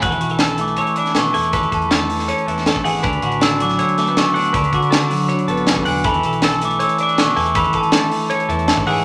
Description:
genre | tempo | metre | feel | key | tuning
math rock and midwest emo | 160 BPM | 4/4 | straight | A major | A4 = 435 Hz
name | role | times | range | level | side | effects
glockenspiel with hard plastic mallets | melody | 0.0-9.0 s | G#5 to E6 | -22 LUFS | equal | none
twelve-string electric guitar | accompaniment | 0.0-9.0 s | A2 to A4 | -24 LUFS | equal | none
twelve-string electric guitar | arpeggios | 0.0-9.0 s | A4 to G#5 | -28 LUFS | equal | none
growling fingered electric bass | bass | 0.0-9.0 s | E1 to E3 | -30 LUFS | equal | overdrive
crisp fusion drum kit | drums | 0.0-9.0 s | hi-hat, kick drum, snare drum | -23 LUFS | equal | none
room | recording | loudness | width
moderate large studio reverb, RT60 1.1 s | none | -17 LUFS | mono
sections
0.0-9.0 A section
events
none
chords
0.0 E7sus4; 1.4 Amaj7/E; 3.0 D6; 6.0 E7sus4; 7.4 Amaj7/E

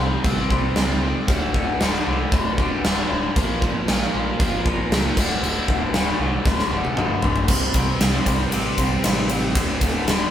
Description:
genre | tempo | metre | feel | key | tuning
hard rock | 116 BPM | 4/4 | straight | unclear | A4 = 440 Hz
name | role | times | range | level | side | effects
cranked stack guitar | riff | 0.0-10.3 s | D2 to C4 | -25 LUFS | left 4 dB | overdrive, phaser
overdriven electric guitar | riff | 0.0-10.3 s | D2 to C4 | -26 LUFS | right 4 dB | none
growling picked electric bass | bass | 0.0-10.2 s | D1 to Bb2 | -28 LUFS | equal | overdrive
huge arena drum kit | drums | 0.2-10.2 s | crash cymbal, kick drum, ride cymbal, snare drum, toms | -21 LUFS | equal | none
room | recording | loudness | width
moderate large studio reverb, RT60 1.0 s | band playing live in one room | -18 LUFS | side -10 dB against mid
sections
0.0-7.5 A section; 7.5-10.3 B section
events
drum fill 6.5-7.5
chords
0.0 C5; 1.3 D5; 3.4 Bb5; 5.2 D5; 7.5 C5; 9.6 D5

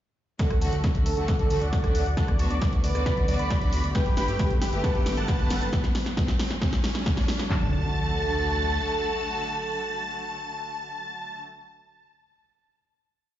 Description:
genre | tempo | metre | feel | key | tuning
uplifting trance | 135 BPM | 4/4 | straight | D major | A4 = 440 Hz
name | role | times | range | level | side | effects
big supersaw lead | melody | 0.4-11.4 s | G4 to C#6 | -32 LUFS | equal | phaser, sidechain pumping, low-pass filter, ping-pong delay
dark grand piano | second line | 0.4-11.4 s | G4 to C#6 | -41 LUFS | right 1 dB | none
warm velvety synth lead | second line | 0.4-11.4 s | A4 to B4 | -33 LUFS | right 2 dB | chorus, ping-pong delay
warm symphonic string section | sustained chords | 0.4-11.4 s | D3 to G4 | -34 LUFS | equal | sidechain pumping
punchy analog drum machine | drums | 0.4-7.6 s | handclaps, kick drum, toms | -25 LUFS | equal | none
punchy analog drum machine | drums | 0.4-7.5 s | hi-hat, rim click, snare drum | -32 LUFS | equal | none
cabasa | percussion | 0.4-5.7 s | none | -48 LUFS | left 5 dB | none
riser and impact | sound effects | 3.3-11.4 s | none | -35 LUFS | equal | none
fat analog bass | bass | 0.5-8.8 s | G1 to D2 | -27 LUFS | equal | sidechain pumping
room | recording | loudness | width
light reverb, digital ambience | played on a big sound system in a bare room, large studio reverb, nothing above 7.5 kHz | -23 LUFS | side -12 dB against mid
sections
0.4-7.5 build; 7.5-11.1 final chord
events
build-up 0.4-7.5; drum fill 0.4-7.5; filter sweep on supersaw synth 0.4-5.7; riser 3.3-7.5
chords
0.4 D; 4.0 Gadd9; 5.7 N.C.; 7.5 D

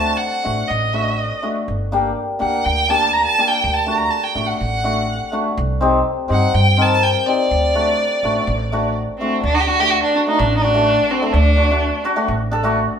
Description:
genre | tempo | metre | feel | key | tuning
klezmer | 124 BPM | 4/4 | straight | D phrygian dominant | A4 = 439 Hz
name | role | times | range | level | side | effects
rich violin | melody | 0.0-12.0 s | C4 to Bb5 | -18 LUFS | right 1 dB | none
hammered dulcimer | accompaniment | 0.0-12.8 s | A3 to Bb4 | -20 LUFS | left 2 dB | none
upright bass | bass | 0.0-12.9 s | G1 to G2 | -20 LUFS | right 1 dB | none
room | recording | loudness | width
wet stone room reverb, RT60 1.1 s | band playing live in one room | -15 LUFS | side -7 dB against mid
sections
0.0-9.4 A section; 9.4-13.0 B section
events
speeding up 0.0-13.0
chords
0.0 D; 1.7 Gm; 3.6 D; 5.6 Cm; 7.5 D

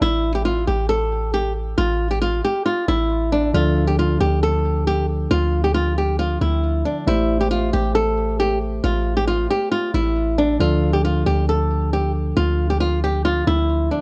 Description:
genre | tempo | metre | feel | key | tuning
hip hop | 136 BPM | 4/4 | half-time | D minor | A4 = 441 Hz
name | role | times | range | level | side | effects
flamenco guitar | melody | 0.0-14.0 s | D4 to A4 | -23 LUFS | equal | low-pass filter
warm 808-style bass | bass | 0.0-13.9 s | A1 to D2 | -24 LUFS | equal | none
tine electric piano | accompaniment | 3.5-14.0 s | D3 to E5 | -27 LUFS | equal | low-pass filter
room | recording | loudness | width
small room ambience | dry, gritty hardware recording | -20 LUFS | mono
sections
0.0-14.0 A section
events
none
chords
0.0 A5; 3.5 Dm; 7.1 Am7; 10.6 Dm

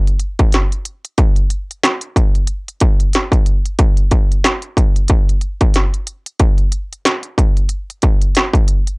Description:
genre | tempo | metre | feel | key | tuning
hip hop | 92 BPM | 4/4 | swing 59% on 16ths | none | none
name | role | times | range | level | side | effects
industrial drum kit | drums | 0.1-9.0 s | hi-hat, kick drum, snare drum | -13 LUFS | equal | distortion, vintage 12-bit sampler grit
room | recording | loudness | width
little or no reverb | dry, gritty hardware recording, cassette tape | -13 LUFS | side -31 dB against mid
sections
0.0-9.0 A section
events
none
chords
none

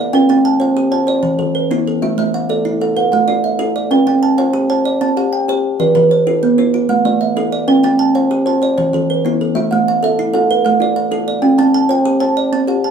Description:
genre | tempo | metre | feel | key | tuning
southern african traditional | 127 BPM (dotted quarters) | 12/8 | straight | A equiheptatonic | A4 = 439 Hz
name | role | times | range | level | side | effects
kalimba | arpeggios | 0.0-12.9 s | E3 to A5 | -14 LUFS | equal | none
kalimba | arpeggios | 0.0-12.9 s | E3 to A5 | -18 LUFS | right 5 dB | none
room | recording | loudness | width
moderate studio reverb, RT60 0.6 s | small room ambience | -12 LUFS | side -7 dB against mid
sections
0.0-9.6 A section; 9.6-12.9 B section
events
none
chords
0.1 C5; 1.1 E5; 2.0 A5; 3.9 C5; 5.8 E5; 6.7 Am; 7.7 C5; 8.6 E5; 9.6 A5; 11.4 C5

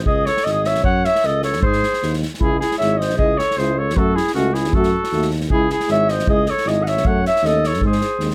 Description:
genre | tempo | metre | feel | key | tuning
balkan folk, Balkan brass band | 155 BPM | 2/4 | swing 54% on 16ths | unclear | A4 = 440 Hz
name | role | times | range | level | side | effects
mellow tuba | bass | 0.0-8.3 s | G#1 to G#2 | -25 LUFS | equal | none
warm flugelhorn | melody | 0.1-8.3 s | F#4 to F#5 | -22 LUFS | equal | none
dark clarinet | second line | 0.1-8.3 s | C#4 to D#5 | -27 LUFS | equal | none
unplugged drum kit | percussion | 0.1-8.3 s | kick drum, snare drum | -26 LUFS | equal | none
mellow French horn | accompaniment | 2.4-8.3 s | B#3 to F#4 | -29 LUFS | equal | none
mellow euphonium | accompaniment | 2.4-8.3 s | G#3 to A3 | -27 LUFS | equal | none
room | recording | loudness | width
light reverb | none | -18 LUFS | mono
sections
0.0-2.4 A section; 2.4-8.3 A section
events
none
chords
0.0 C#5; 0.9 F#5; 1.6 G#; 2.4 C#m; 4.0 F#m; 5.5 C#m; 7.0 F#m; 7.8 G#

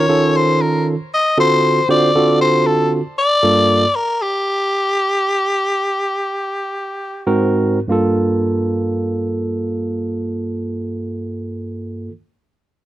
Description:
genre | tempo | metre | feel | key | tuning
blues | 94-117 BPM | 4/4 | straight | unclear | A4 = 440 Hz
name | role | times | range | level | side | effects
growling tenor saxophone | melody | 0.0-7.3 s | G4 to Eb5 | -16 LUFS | left 2 dB | none
barky tine electric piano | accompaniment | 0.0-3.8, 7.3-12.1 s | G2 to C5 | -16 LUFS | right 2 dB | overdrive
room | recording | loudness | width
little or no reverb | dry, close 1970s-style studio recording | -15 LUFS | side -14 dB against mid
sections
0.0-7.9 A section; 7.9-12.8 B section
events
slowing down 3.4-7.9; stop 3.4-7.3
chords
0.0 Eb7(no3); 1.4 D7#9; 3.4 Gm7; 7.3 Ab7; 7.9 Gm7

